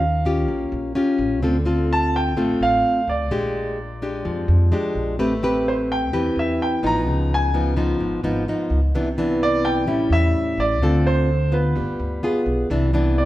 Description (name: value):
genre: bossa nova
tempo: 128 BPM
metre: 4/4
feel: straight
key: unclear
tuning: A4 = 440 Hz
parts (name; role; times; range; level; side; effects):
- clear concert grand piano; melody; 0.0-13.3 s; B4 to Bb5; -23 LUFS; right 1 dB; none
- nylon-string guitar; accompaniment; 0.0-13.3 s; Ab2 to B4; -21 LUFS; left 1 dB; none
- upright bass; bass; 0.0-13.3 s; G1 to F2; -23 LUFS; equal; none
room: wet stone room reverb, RT60 1.3 s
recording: band playing live in one room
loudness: -18 LUFS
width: side -15 dB against mid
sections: 0.0-12.7 A section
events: none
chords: 0.0 Eb9; 1.4 Dm7; 3.3 Bb6; 5.2 Am9; 7.1 Db9; 8.9 Cmaj9; 9.9 A7; 10.8 Dm7; 11.8 G7b9; 12.7 Cmaj9